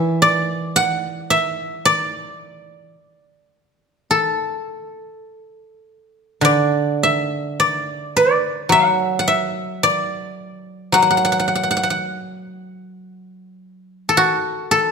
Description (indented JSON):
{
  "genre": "chinese traditional, Chinese solo plucked strings",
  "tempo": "51-58 BPM",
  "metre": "4/4",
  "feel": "rubato",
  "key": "D gong mode",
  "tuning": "A4 = 440 Hz",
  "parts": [
    { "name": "guzheng", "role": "solo", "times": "0.0-14.9 s", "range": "D3 to F#5", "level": "-16 LUFS", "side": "equal", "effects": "none" }
  ],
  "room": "moderate recital hall reverb, RT60 1.6 s",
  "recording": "none",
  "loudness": "-16 LUFS",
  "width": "side -5 dB against mid",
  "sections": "0.0-14.9 A section",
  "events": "none",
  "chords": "none"
}